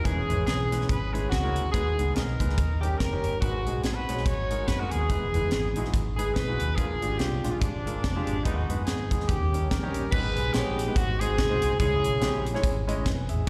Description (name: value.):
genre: uptempo gospel.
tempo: 143 BPM.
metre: 4/4.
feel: swing 58% on 8ths.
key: G# minor.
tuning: A4 = 438 Hz.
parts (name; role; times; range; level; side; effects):
warm horn section; melody; 0.0-12.6 s; E#3 to C#5; -32 LUFS; equal; slapback echo.
warm concert grand piano; accompaniment; 0.0-13.5 s; G#2 to G#5; -35 LUFS; equal; slapback echo.
fingered electric bass with an envelope filter; bass; 0.0-13.5 s; E1 to G#2; -32 LUFS; equal; none.
tight funk drum kit; drums; 0.1-13.4 s; crash cymbal, hi-hat, kick drum, snare drum; -32 LUFS; equal; none.
room: studio reverb.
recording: live gig heard through the venue's PA, recital hall reverb.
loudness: -27 LUFS.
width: mono.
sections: 0.0-10.1 A section; 10.1-13.5 B section.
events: none.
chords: 0.1 C#m7/E; 1.7 G#m; 2.6 D#7; 3.4 G#m7; 5.1 Emaj7; 6.8 A#7; 8.5 G#m/D#; 9.3 D#7; 10.1 G#m; 11.0 G#7; 11.8 C#m.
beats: | 0.05 0.47 0.90 1.32 | 1.74 2.16 2.58 3.00 | 3.42 3.84 4.26 4.68 | 5.10 5.52 5.94 6.36 | 6.78 7.20 7.62 8.04 | 8.45 8.87 9.29 9.71 | 10.13 10.55 10.97 11.38 | 11.80 12.22 12.64 13.06 | 13.48.